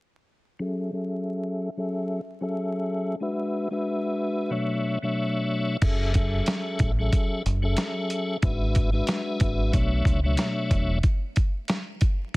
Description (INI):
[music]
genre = hip hop, boom-bap hip-hop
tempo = 92 BPM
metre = 4/4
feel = swing 58% on 16ths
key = F# minor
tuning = A4 = 440 Hz
[part]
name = tonewheel organ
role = accompaniment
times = 0.6-11.0 s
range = B2 to E5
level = -27 LUFS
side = left 1 dB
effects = chorus vibrato, cassette tape, high-pass filter, low-pass filter
[part]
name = deep dub fingered electric bass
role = bass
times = 5.8-11.0 s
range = E1 to C#2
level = -25 LUFS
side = equal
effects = none
[part]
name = dusty soul sampler-style drum kit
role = drums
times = 5.8-12.4 s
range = crash cymbal, hi-hat, kick drum, snare drum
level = -24 LUFS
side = equal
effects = none
[sound]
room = little or no reverb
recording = dense, heavily limited modern master, vinyl crackle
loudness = -23 LUFS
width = side -22 dB against mid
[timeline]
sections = 0.6-5.8 A section; 5.8-12.4 B section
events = filter sweep on tonewheel organ 0.6-5.8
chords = 0.6 F#m9; 3.2 E9/G#; 4.5 Bm11; 5.8 F#m9; 8.4 E9/G#; 9.7 Bm11; 11.0 N.C.